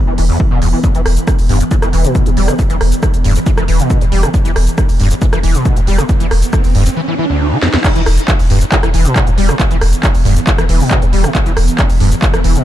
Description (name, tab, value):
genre	driving peak-time techno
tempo	137 BPM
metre	4/4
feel	straight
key	E minor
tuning	A4 = 440 Hz
part	swarming drone	drone	0.0-12.6 s	E3 to B3	-23 LUFS	right 1 dB	built-in reverb, sidechain pumping
part	overdriven acid bass	riff	0.1-12.6 s	D2 to G3	-17 LUFS	equal	distortion, ensemble chorus, sidechain pumping, dub echo
part	warm sub bass	bass	0.1-12.6 s	E1	-14 LUFS	equal	overdrive, sidechain pumping, low-pass filter
part	techno drum kit	drums	0.2-12.6 s	crash cymbal, handclaps, hi-hat, rim click, shaker, snare drum	-19 LUFS	right 1 dB	none
part	electronic kick drum	drums	0.4-12.3 s	none	-14 LUFS	equal	none
part	riser	sound effects	5.7-7.8 s	none	-23 LUFS	right 2 dB	none
room	little or no reverb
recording	dark, warm production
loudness	-10 LUFS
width	side -12 dB against mid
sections	0.0-7.8 A section; 7.8-12.6 B section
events	filter sweep on acid bass 0.0-7.8; riser 5.7-7.8; drum fill 7.6; drop 7.8-12.6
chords	0.0 E5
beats	0.40 | 0.84 1.27 1.71 2.15 | 2.59 3.03 3.46 3.90 | 4.34 4.78 5.22 5.65 | 6.09 6.53 6.97 7.41 | 7.84 8.28 8.72 9.16 | 9.60 10.03 10.47 10.91 | 11.35 11.79 12.22